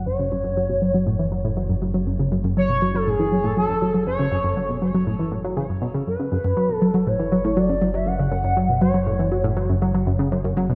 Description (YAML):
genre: ambient, sequencer-driven space music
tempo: 120 BPM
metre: 4/4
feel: straight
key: F# minor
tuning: A4 = 440 Hz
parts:
  - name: expressive synth lead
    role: melody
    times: 0.0-9.8 s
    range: G#4 to F#5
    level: -27 LUFS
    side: equal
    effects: analog chorus, tape echo
  - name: tight sequenced synth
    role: riff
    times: 0.0-10.8 s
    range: F#2 to F#3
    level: -24 LUFS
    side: equal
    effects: chorus, phaser, tape echo
  - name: fat analog bass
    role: bass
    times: 0.0-10.8 s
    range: F#1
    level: -30 LUFS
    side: equal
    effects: tube saturation
room: wet concert hall reverb, RT60 2.1 s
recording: none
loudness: -22 LUFS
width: mono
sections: 0.0-6.1 A section; 6.1-10.8 B section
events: filter sweep on synth arpeggio sound 0.0-6.1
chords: 0.0 F#m